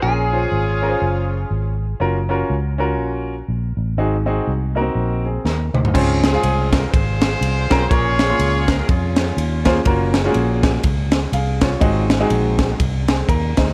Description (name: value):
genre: uptempo gospel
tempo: 122 BPM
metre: 4/4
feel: swing 59% on 8ths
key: Db major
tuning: A4 = 443 Hz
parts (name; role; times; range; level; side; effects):
- clean electric guitar; melody; 0.0-1.8 s; Ab4; -28 LUFS; equal; tape echo
- warm horn section; melody; 0.0-1.8, 6.2-9.8 s; C4 to Db5; -25 LUFS; equal; none
- clear concert grand piano; accompaniment; 0.0-13.7 s; Ab2 to C6; -24 LUFS; equal; none
- vintage muted fingered electric bass; bass; 0.0-13.7 s; Gb1 to F2; -23 LUFS; equal; none
- crisp fusion drum kit; drums; 5.5-13.7 s; crash cymbal, kick drum, ride cymbal, snare drum, toms; -21 LUFS; equal; none
room: light reverb, studio reverb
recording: none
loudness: -18 LUFS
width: mono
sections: 0.0-5.9 A section; 5.9-13.7 B section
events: drum fill 5.5-5.9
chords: 0.0 Bbm7; 2.0 Gbmaj7; 4.0 Ab7; 5.9 Dbmaj7; 7.9 Bbm7; 9.9 Gbmaj7; 11.8 Ab7